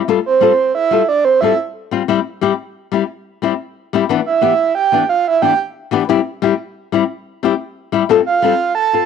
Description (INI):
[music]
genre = highlife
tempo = 120 BPM (dotted quarters)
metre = 12/8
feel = straight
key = C major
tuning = A4 = 440 Hz
[part]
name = flamenco guitar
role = accompaniment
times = 0.1-9.0 s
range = E3 to A4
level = -15 LUFS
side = left 10 dB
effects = cassette tape
[part]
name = breathy flute-like synth lead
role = melody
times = 0.3-9.1 s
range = C5 to A5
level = -13 LUFS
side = right 6 dB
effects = chorus, cassette tape
[sound]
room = moderate studio reverb, RT60 0.6 s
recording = home recording on cassette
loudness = -14 LUFS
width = side -6 dB against mid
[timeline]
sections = 0.0-9.1 A section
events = soft synth lead solo 0.0-9.1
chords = 0.1 Fadd9; 2.1 C; 4.1 G6; 6.1 C; 8.1 Fadd9